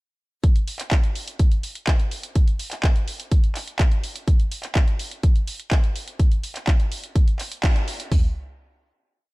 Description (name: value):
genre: house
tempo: 125 BPM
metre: 4/4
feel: straight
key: none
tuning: none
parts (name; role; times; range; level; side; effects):
- pop drum kit; drums; 0.4-8.2 s; hi-hat, kick drum, toms; -18 LUFS; equal; small room ambience
- pop drum kit; drums; 0.4-8.1 s; handclaps, hi-hat; -29 LUFS; right 1 dB; small room ambience
room: little or no reverb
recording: none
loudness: -20 LUFS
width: side -22 dB against mid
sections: 0.4-8.1 drop; 8.1-9.3 final hit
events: drop 0.4-8.1; band accent 7.6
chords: none